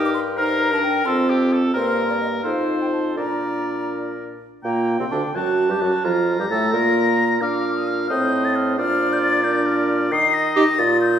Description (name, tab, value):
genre	quick classical-period movement for wind quintet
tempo	88 BPM (dotted quarters)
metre	6/8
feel	rubato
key	Bb major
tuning	A4 = 440 Hz
part	mellow hollow silver concert flute	melody	0.0-11.2 s	C5 to C7	-24 LUFS	left 4 dB	none
part	clear oboe	second line	0.0-11.2 s	G4 to Bb5	-25 LUFS	left 1 dB	none
part	clear clarinet	accompaniment	0.0-10.6 s	Bb3 to C5	-26 LUFS	right 4 dB	none
part	mellow French horn	accompaniment	0.0-10.6 s	Bb2 to Eb4	-24 LUFS	equal	none
part	mellow bassoon	bass	0.0-11.2 s	C2 to Eb3	-24 LUFS	right 2 dB	none
room	wet recital hall reverb, RT60 1.3 s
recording	heard from further back in the room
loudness	-17 LUFS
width	side -9 dB against mid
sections	0.0-4.6 A section; 4.6-11.2 B section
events	none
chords	0.4 Cm7/G; 1.1 F; 1.7 Gmadd11; 2.4 F7; 3.2 Bb; 4.6 Gm/Bb; 5.4 F#m; 6.0 Gm; 7.4 Bb; 8.1 Am7b5; 8.8 Bb; 10.1 Eb5